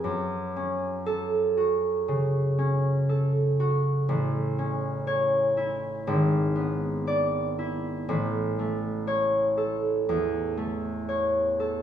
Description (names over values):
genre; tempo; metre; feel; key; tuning
classical, solo harp piece; 60 BPM; 4/4; rubato; unclear; A4 = 436 Hz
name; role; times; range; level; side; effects
concert harp; solo; 0.0-11.8 s; G#1 to D5; -24 LUFS; equal; none
room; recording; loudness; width
wet stone room reverb, RT60 1.4 s; small room reverb; -24 LUFS; side -9 dB against mid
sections
0.0-11.8 A section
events
none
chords
0.0 F#m; 4.1 A; 6.1 E7/G#; 8.1 A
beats
| 0.04 1.08 2.09 3.09 | 4.09 5.08 6.07 7.06 | 8.06 9.06 10.07 11.07